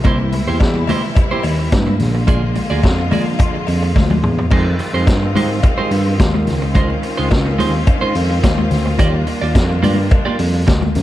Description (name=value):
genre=disco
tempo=107 BPM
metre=4/4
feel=straight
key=unclear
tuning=A4 = 441 Hz
part: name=clean electric guitar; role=accompaniment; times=0.0-10.9 s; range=Ab3 to D5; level=-22 LUFS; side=right 3 dB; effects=lush chorus
part: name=bright studio string section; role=sustained chords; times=0.0-11.0 s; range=C3 to F4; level=-22 LUFS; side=equal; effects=none
part: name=barky tine electric piano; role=bass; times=0.0-11.0 s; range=Bb1 to Ab2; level=-18 LUFS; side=equal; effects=overdrive
part: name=vintage drum kit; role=drums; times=0.0-11.0 s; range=crash cymbal, hi-hat, kick drum, snare drum, toms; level=-17 LUFS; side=equal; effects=none
part: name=congas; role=percussion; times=0.0-11.0 s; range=none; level=-24 LUFS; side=left 4 dB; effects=none
part: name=cowbell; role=percussion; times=0.0-10.8 s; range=none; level=-31 LUFS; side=left 7 dB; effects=none
room=moderate large studio reverb, RT60 1.4 s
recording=dark, warm production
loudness=-13 LUFS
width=side -14 dB against mid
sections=0.0-4.5 A section; 4.5-11.0 B section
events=drum fill 4.0-4.5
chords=0.0 C7; 2.0 Bb7; 4.5 Fm9; 6.5 Dbmaj9; 9.0 Ebmaj9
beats=| 0.04 0.60 1.16 1.72 | 2.28 2.84 3.40 3.96 | 4.51 5.07 5.63 6.19 | 6.75 7.31 7.87 8.43 | 8.99 9.55 10.12 10.68